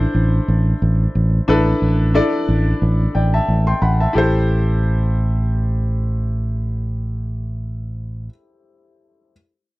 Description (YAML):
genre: 1980s-style pop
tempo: 90 BPM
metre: 4/4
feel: swing 55% on 16ths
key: A minor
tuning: A4 = 442 Hz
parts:
  - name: clear grand piano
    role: accompaniment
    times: 0.0-9.3 s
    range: D4 to C6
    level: -21 LUFS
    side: left 2 dB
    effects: none
  - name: fingered electric bass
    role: bass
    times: 0.0-8.3 s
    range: A1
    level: -17 LUFS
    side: equal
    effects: none
room: light reverb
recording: dry, close 1970s-style studio recording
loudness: -16 LUFS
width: side -20 dB against mid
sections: 0.0-4.1 A section; 4.1-6.8 B section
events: none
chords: 0.0 Dsus2/A; 4.1 Am7